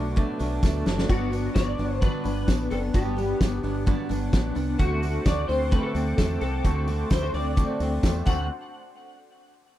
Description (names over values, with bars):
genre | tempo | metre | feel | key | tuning
jangly indie pop | 130 BPM | 4/4 | straight | D mixolydian | A4 = 440 Hz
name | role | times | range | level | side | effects
electric guitar through a small old amp | melody | 0.0-8.5 s | F#4 to F#5 | -31 LUFS | left 1 dB | ensemble chorus, tape echo
picked steel-string acoustic guitar | accompaniment | 0.0-8.5 s | G2 to F#4 | -33 LUFS | right 6 dB | none
phased analog pad | sustained chords | 0.0-8.5 s | B4 to D6 | -40 LUFS | equal | phaser, chorus
electric guitar through a small old amp | arpeggios | 0.0-8.5 s | A3 to F#4 | -31 LUFS | left 4 dB | tremolo
deep dub fingered electric bass | bass | 0.0-8.5 s | F#1 to E2 | -28 LUFS | equal | none
loose indie drum kit | drums | 0.2-8.4 s | crash cymbal, hi-hat, kick drum, snare drum | -23 LUFS | equal | none
tambourine | percussion | 0.4-8.5 s | none | -50 LUFS | right 7 dB | none
room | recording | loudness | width
studio ambience | none | -22 LUFS | side -13 dB against mid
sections
0.0-8.5 A section; 8.5-9.8 B section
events
drum fill 0.6-1.1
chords
0.0 Bm7; 1.1 Gmaj7; 4.8 D7; 8.5 N.C.